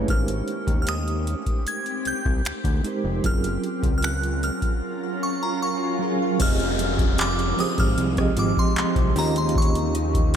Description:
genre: contemporary R&B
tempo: 76 BPM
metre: 4/4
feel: straight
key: F minor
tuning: A4 = 440 Hz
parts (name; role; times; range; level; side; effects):
- tine electric piano; accompaniment; 0.0-10.4 s; Eb3 to Eb5; -28 LUFS; right 5 dB; medium tremolo
- granular cloud pad; sustained chords; 0.0-10.4 s; Eb3 to Bb4; -29 LUFS; left 1 dB; built-in reverb, sidechain pumping
- fat analog bass; bass; 0.0-10.4 s; F1 to Eb2; -26 LUFS; left 1 dB; none
- glassy synth bell; melody; 0.1-10.3 s; Bb5 to Ab6; -29 LUFS; equal; chorus, ping-pong delay
- booming analog drum machine; drums; 0.1-10.4 s; crash cymbal, finger snaps, handclaps, hi-hat, kick drum, rim click; -24 LUFS; left 1 dB; none
- swell and downlifter; sound effects; 4.7-10.4 s; none; -34 LUFS; left 1 dB; none
- mallet-like synth pluck; texture; 6.4-10.4 s; F4 to Eb5; -41 LUFS; right 2 dB; none
room: moderate plate reverb, RT60 3.1 s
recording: dreamy mix soaked in reverb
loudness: -21 LUFS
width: side -8 dB against mid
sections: 0.0-6.4 A section; 6.4-10.4 B section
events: swell 4.7-6.4; drums muted 4.8-6.4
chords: 0.1 Abmaj7; 3.2 Gbmaj7; 6.4 Fm7; 9.2 Eb7

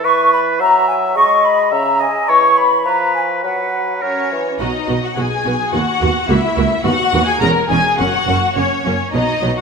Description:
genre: quick classical-period movement for symphony orchestra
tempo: 105 BPM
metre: 2/4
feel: straight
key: B major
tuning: A4 = 440 Hz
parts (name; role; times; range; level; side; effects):
- clear oboe; second line; 0.0-4.3 s; A#4 to E5; -20 LUFS; equal; none
- large flute ensemble; second line; 0.0-4.0 s; F#5 to C#6; -14 LUFS; left 1 dB; none
- mellow bassoon; accompaniment; 0.0-4.6 s; C#3 to G#3; -20 LUFS; right 1 dB; none
- clear studio violin section; melody; 4.0-9.6 s; C#5 to A#5; -19 LUFS; left 3 dB; none
- rich studio violin section; second line; 4.0-9.6 s; C#4 to A#4; -21 LUFS; left 4 dB; none
- rich studio viola section; accompaniment; 4.6-9.5 s; F#3 to F#4; -21 LUFS; right 2 dB; none
- rich studio double bass section; bass; 4.6-9.5 s; E1 to D#2; -23 LUFS; right 4 dB; none
- warm studio cello section; bass; 4.6-9.5 s; C#2 to B2; -22 LUFS; right 4 dB; none
room: wet concert hall reverb, RT60 2.1 s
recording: minimal, uncompressed stereo recording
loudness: -13 LUFS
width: side -5 dB against mid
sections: 0.0-4.6 A section; 4.6-9.6 B section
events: none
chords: 0.0 C#m7/E; 0.6 F#7; 1.2 G#m; 1.7 C#m; 2.3 C#m/E; 2.9 F(b5, no3); 3.4 B5/F#; 4.0 F#; 4.6 B5; 5.7 B/D#; 6.3 F#7/C#; 6.8 B; 7.4 C#m/E; 8.0 F#

